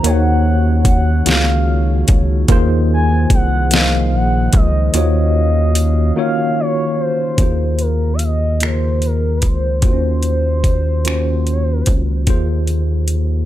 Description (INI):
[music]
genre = slow six-eight R&B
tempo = 49 BPM (dotted quarters)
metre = 6/8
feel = straight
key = Eb dorian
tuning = A4 = 440 Hz
[part]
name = gliding portamento lead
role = melody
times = 0.0-11.9 s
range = Bb4 to Ab5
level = -22 LUFS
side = equal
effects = chorus, tape echo
[part]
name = tine electric piano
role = accompaniment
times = 0.0-13.5 s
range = Db3 to Eb5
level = -20 LUFS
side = left 1 dB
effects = medium stereo tremolo
[part]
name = glass harmonica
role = sustained chords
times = 0.0-7.4 s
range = Bb3 to F5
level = -29 LUFS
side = left 1 dB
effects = none
[part]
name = rubbery square bass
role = bass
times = 0.0-13.5 s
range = Bb1 to Eb2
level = -16 LUFS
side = equal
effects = none
[part]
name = smooth R&B drum kit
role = drums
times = 0.0-13.3 s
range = finger snaps, hi-hat, kick drum, snare drum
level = -15 LUFS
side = equal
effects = none
[sound]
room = digital ambience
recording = dry, gritty hardware recording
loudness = -13 LUFS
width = side -13 dB against mid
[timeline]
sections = 0.0-7.4 A section; 7.4-13.5 B section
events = break 6.2-7.4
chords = 0.0 Ebm9; 2.5 Bb9sus4; 4.9 Ebm9; 7.4 Bb9sus4/Eb; 9.8 Ebm9; 12.3 Bb9sus4/Eb